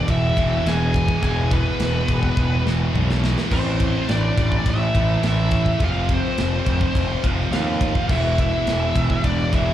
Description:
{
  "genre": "heavy metal",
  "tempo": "105 BPM",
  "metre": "4/4",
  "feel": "straight",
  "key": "E phrygian dominant",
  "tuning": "A4 = 440 Hz",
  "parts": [
    { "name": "high-gain lead guitar", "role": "melody", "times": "0.0-9.7 s", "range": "B4 to G#5", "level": "-26 LUFS", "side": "left 1 dB", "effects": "distortion, slapback echo, ping-pong delay" },
    { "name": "high-gain lead guitar", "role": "second line", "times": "0.0-9.7 s", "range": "B3 to G#4", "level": "-32 LUFS", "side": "right 3 dB", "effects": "distortion, slapback echo" },
    { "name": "scooped high-gain guitar", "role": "riff", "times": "0.0-9.7 s", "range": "E2 to A3", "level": "-26 LUFS", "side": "equal", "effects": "distortion" },
    { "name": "thick fuzz guitar", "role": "riff", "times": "0.0-9.7 s", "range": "A2 to F4", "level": "-27 LUFS", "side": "equal", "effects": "distortion" },
    { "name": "fuzz picked electric bass", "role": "bass", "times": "0.1-9.7 s", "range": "E1 to D#2", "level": "-22 LUFS", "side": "equal", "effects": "overdrive" },
    { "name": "tight metal drum kit", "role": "drums", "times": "0.1-9.7 s", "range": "crash cymbal, kick drum, ride cymbal, snare drum, toms", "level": "-24 LUFS", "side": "equal", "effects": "none" }
  ],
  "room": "little or no reverb",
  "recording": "live gig heard through the venue's PA, club reverb",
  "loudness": "-18 LUFS",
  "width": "side -12 dB against mid",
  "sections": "0.0-9.7 A section",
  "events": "drum fill 2.4-3.5",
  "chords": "0.0 E; 3.5 Am; 5.8 F; 8.1 E"
}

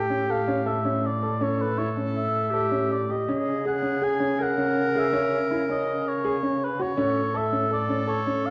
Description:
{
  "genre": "contemporary instrumental, chamber music in an uneven meter",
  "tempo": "162 BPM",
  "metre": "5/4",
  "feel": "straight",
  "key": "unclear",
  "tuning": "A4 = 440 Hz",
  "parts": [
    { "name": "mellow oboe", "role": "melody", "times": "0.0-8.5 s", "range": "B4 to G#5", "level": "-31 LUFS", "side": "equal", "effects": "none" },
    { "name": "clear clarinet", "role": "second line", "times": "0.0-8.5 s", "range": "G4 to A#4", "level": "-31 LUFS", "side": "equal", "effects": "none" },
    { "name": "warm concert grand piano", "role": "arpeggios", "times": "0.0-8.5 s", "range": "C#4 to A4", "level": "-30 LUFS", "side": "equal", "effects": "none" },
    { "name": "dark cello", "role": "bass", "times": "0.0-8.5 s", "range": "A2 to C#3", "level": "-33 LUFS", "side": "equal", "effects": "none" }
  ],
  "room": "wet recital hall reverb, RT60 1.5 s",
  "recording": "worn, warbling old tape, cassette tape, warbly pitch drift",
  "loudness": "-25 LUFS",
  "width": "mono",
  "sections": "0.0-8.5 A section",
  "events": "none",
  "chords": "0.0 A; 3.3 C#5; 7.0 A"
}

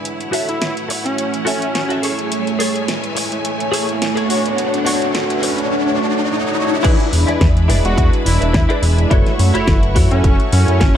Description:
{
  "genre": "nu-disco, nu disco",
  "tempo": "106 BPM",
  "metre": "4/4",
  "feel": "swing 54% on 16ths",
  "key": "unclear",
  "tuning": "A4 = 439 Hz",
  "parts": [
    { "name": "warm analog pad", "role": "accompaniment", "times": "0.0-10.9 s", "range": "G#3 to G#5", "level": "-20 LUFS", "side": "right 1 dB", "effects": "chorus, sidechain pumping, tape echo" },
    { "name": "bright studio string section", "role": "sustained chords", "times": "0.0-11.0 s", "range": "A3 to C#6", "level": "-28 LUFS", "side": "left 1 dB", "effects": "vintage 12-bit sampler grit, sidechain pumping" },
    { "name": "riser", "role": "sound effects", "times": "1.1-6.8 s", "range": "none", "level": "-24 LUFS", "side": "left 1 dB", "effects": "none" },
    { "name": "pop drum kit", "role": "drums", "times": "0.1-10.9 s", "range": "crash cymbal, hi-hat, snare drum", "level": "-23 LUFS", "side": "equal", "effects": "high-pass filter on perc, high-pass filter on hats, high-pass filter on snare, high-pass filter on cymbals" },
    { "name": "direct-recorded clean electric guitar", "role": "riff", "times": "0.3-11.0 s", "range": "D4 to E5", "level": "-23 LUFS", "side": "left 1 dB", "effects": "ensemble chorus, low-pass filter" },
    { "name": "wide unison lead", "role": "melody", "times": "0.5-2.1, 7.9-11.0 s", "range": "C#4 to F#4", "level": "-23 LUFS", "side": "equal", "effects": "tape echo" },
    { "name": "chorused synth bass", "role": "bass", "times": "6.8-10.9 s", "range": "E1 to F#2", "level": "-15 LUFS", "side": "equal", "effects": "none" },
    { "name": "electronic kick drum", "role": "drums", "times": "6.8-10.9 s", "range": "none", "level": "-15 LUFS", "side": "equal", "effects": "none" }
  ],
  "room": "light reverb",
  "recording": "none",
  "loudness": "-14 LUFS",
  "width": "side -10 dB against mid",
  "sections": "0.0-6.8 A section; 6.8-11.0 B section",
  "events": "build-up 0.0-6.8; filter sweep on clean electric guitar 0.0-6.8; filter sweep on analog synth pad 0.0-6.8; riser 1.1-6.8; drop 6.8-11.0",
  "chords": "0.1 F#m7; 2.0 Amaj7; 4.3 Dmaj7; 6.8 E7; 9.1 F#m7"
}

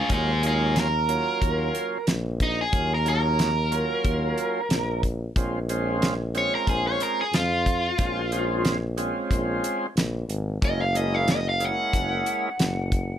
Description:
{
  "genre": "straight-eighth soul blues",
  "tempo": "91 BPM",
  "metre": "4/4",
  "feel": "swing 53% on 16ths",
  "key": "Bb minor",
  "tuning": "A4 = 440 Hz",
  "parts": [
    { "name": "biting overdriven guitar", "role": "melody", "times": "0.0-13.2 s", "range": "Eb4 to Gb5", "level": "-25 LUFS", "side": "equal", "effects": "none" },
    { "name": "tonewheel organ", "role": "accompaniment", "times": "0.1-12.5 s", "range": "Gb3 to F4", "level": "-29 LUFS", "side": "right 2 dB", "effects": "slow rotary speaker, overdrive" },
    { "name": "warm tuba", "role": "bass", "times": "0.1-13.2 s", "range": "Gb1 to F2", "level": "-27 LUFS", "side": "left 1 dB", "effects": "none" },
    { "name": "damped 70s drum kit", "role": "drums", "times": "0.1-13.1 s", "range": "hi-hat, kick drum, snare drum", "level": "-25 LUFS", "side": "equal", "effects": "none" }
  ],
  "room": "light reverb",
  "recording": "none",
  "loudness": "-22 LUFS",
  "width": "side -10 dB against mid",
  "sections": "0.0-13.2 A section",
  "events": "overdriven electric guitar solo 0.0-13.2",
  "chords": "0.1 Ebm7; 5.4 Bbm7; 10.6 Gb7"
}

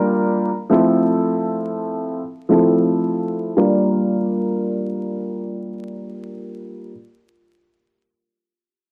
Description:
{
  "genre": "hip hop",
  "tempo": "free time",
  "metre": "none",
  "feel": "none",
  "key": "G dorian",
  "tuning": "A4 = 440 Hz",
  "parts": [
    { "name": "dark upright piano", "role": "accompaniment", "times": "0.0-6.9 s", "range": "F3 to Bb4", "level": "-20 LUFS", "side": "equal", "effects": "cassette tape, high-pass filter, low-pass filter" }
  ],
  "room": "light reverb, digital ambience",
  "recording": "vinyl crackle",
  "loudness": "-19 LUFS",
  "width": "mono",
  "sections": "0.0-3.6 A section; 3.6-6.4 B section",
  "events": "filter sweep on upright piano 0.0-3.6",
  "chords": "0.0 Gm7; 0.7 Fmaj7; 3.6 Gm7"
}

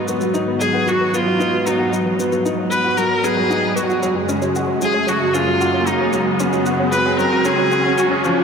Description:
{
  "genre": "piano and strings electronica",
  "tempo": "114 BPM",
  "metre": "4/4",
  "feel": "straight",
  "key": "unclear",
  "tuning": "A4 = 441 Hz",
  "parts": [
    { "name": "lush unison pad", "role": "sustained chords", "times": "0.0-8.4 s", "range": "F#2 to E#5", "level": "-23 LUFS", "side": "equal", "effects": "chorus" },
    { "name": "clear baby grand piano", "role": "riff", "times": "0.0-8.4 s", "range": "E#3 to G#4", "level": "-21 LUFS", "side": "equal", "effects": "ping-pong delay" },
    { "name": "riser", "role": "sound effects", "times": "0.0-8.4 s", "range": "none", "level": "-25 LUFS", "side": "right 1 dB", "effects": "none" },
    { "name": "soft round pluck", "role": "arpeggios", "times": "0.1-8.4 s", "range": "E#4 to F#5", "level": "-27 LUFS", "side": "right 1 dB", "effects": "chorus, ping-pong delay" },
    { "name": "shaker", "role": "drums", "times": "0.1-8.3 s", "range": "none", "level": "-32 LUFS", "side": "left 3 dB", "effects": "high-pass filter on perc" },
    { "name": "clear viola", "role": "melody", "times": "0.6-8.3 s", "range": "D#4 to B4", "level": "-20 LUFS", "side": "left 1 dB", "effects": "ping-pong delay" }
  ],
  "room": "moderate huge ambient reverb, RT60 4.2 s",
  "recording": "none",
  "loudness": "-15 LUFS",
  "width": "side -6 dB against mid",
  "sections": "0.0-8.4 A section",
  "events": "build-up 0.0-8.4; riser 0.0-8.4; filter sweep on synth arpeggio sound 0.0-8.4",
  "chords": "0.0 G#m7; 4.0 F#sus2"
}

